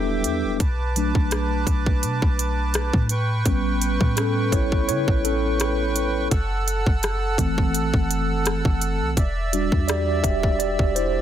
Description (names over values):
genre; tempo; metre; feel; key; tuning
contemporary R&B; 84 BPM; 4/4; swing 54% on 16ths; E minor; A4 = 440 Hz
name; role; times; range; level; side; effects
mellow tine electric piano; accompaniment; 0.0-11.2 s; E3 to E5; -25 LUFS; equal; medium stereo tremolo
accordion; sustained chords; 0.0-11.2 s; A4 to E6; -28 LUFS; right 3 dB; light tremolo tuning
clean 808-style bass; bass; 0.0-11.2 s; E1 to C#3; -25 LUFS; equal; none
trap drum kit; drums; 0.2-11.1 s; hi-hat, kick drum, rim click; -22 LUFS; equal; soft clipping on snare
room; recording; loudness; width
little or no reverb; dense, heavily limited modern master; -20 LUFS; side -10 dB against mid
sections
0.0-11.2 A section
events
tine electric piano solo 0.0-11.2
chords
0.0 Em7; 0.6 Bm7; 3.1 A9; 6.3 F#m7b5; 9.2 Em7